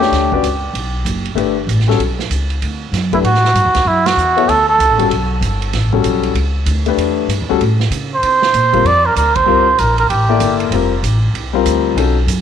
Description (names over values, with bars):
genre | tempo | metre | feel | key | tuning
modal jazz | 192 BPM | 4/4 | swing 62% on 8ths | E dorian, A phrygian from 3.2 s | A4 = 439 Hz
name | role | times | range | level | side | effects
trumpet with cup mute | melody | 0.0-0.6, 3.1-5.1, 8.1-10.6 s | E4 to D5 | -14 LUFS | right 3 dB | tape echo
warm grand piano | accompaniment | 0.0-12.2 s | G3 to D5 | -17 LUFS | left 12 dB | none
upright bass | bass | 0.0-12.4 s | F1 to C#3 | -17 LUFS | equal | none
vintage drum kit | drums | 0.0-12.4 s | hi-hat, kick drum, ride cymbal, snare drum | -24 LUFS | right 8 dB | none
room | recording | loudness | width
light reverb, small room ambience | 1960s-style stereo with parts hard left and right | -12 LUFS | side -8 dB against mid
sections
0.0-3.2 A section; 3.2-12.4 B section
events
band accent 4.0, 9.3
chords
0.0 Em9 (rootless); 3.2 A13sus4; 8.2 C13sus4